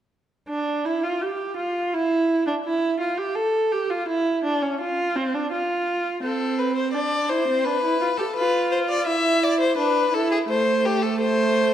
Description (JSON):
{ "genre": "classical, baroque-style fugue for string quartet", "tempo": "84 BPM", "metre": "4/4", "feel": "straight", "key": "unclear", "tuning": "A4 = 441 Hz", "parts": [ { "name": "warm viola", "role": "accompaniment", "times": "0.5-11.7 s", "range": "A3 to A4", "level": "-22 LUFS", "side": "right 2 dB", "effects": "none" }, { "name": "rich violin", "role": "second line", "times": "6.2-11.7 s", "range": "G4 to E5", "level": "-21 LUFS", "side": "left 3 dB", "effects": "none" } ], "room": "wet scoring stage reverb, RT60 1.5 s", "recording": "none", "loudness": "-20 LUFS", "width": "side -10 dB against mid", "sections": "0.5-11.7 A section", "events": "none", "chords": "0.5 N.C.; 6.2 Am/C; 7.7 Bdim/D; 9.1 E5; 10.5 Am" }